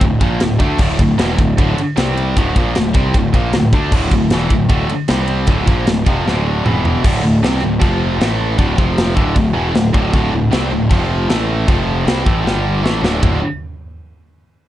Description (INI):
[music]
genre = heavy metal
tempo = 154 BPM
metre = 4/4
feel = straight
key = D minor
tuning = A4 = 440 Hz
[part]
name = heavy high-gain guitar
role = riff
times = 0.0-13.4 s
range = D2 to D4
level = -17 LUFS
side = equal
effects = distortion
[part]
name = fuzz picked electric bass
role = bass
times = 0.0-13.4 s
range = D1 to D2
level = -19 LUFS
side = equal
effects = overdrive
[part]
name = tight metal drum kit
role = drums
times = 0.0-13.3 s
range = crash cymbal, kick drum, ride cymbal, snare drum, toms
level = -17 LUFS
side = equal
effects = vintage 12-bit sampler grit
[sound]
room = little or no reverb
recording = dark, warm production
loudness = -13 LUFS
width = side -13 dB against mid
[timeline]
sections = 0.0-7.0 A section; 7.0-13.2 B section; 13.2-14.7 C section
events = drum fill 6.3-7.0, 12.5-13.2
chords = 0.0 D5; 2.0 C5; 2.4 Dm; 5.1 C5; 5.5 Dm; 6.7 E5; 7.0 D5; 7.8 F5; 8.2 A5; 8.6 D5; 8.8 F5; 9.2 D5; 10.9 F5; 11.3 A5; 11.7 F5; 12.1 Am7; 12.5 G5; 12.8 D5